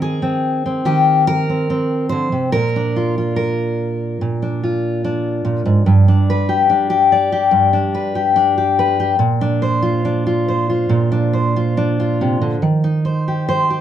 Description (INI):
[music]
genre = folk, solo fingerstyle acoustic guitar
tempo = 72 BPM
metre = 4/4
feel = straight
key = unclear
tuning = A4 = 438 Hz
[part]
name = fingerpicked steel-string acoustic guitar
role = solo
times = 0.0-13.8 s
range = G2 to D5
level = -14 LUFS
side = equal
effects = none
[sound]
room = wet studio ambience, RT60 0.5 s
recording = band playing live in one room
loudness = -14 LUFS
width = side -10 dB against mid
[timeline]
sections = 0.0-13.8 A section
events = none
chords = 0.0 Eb5; 2.5 Bb; 5.9 G; 9.2 Bbadd9; 12.6 Eb6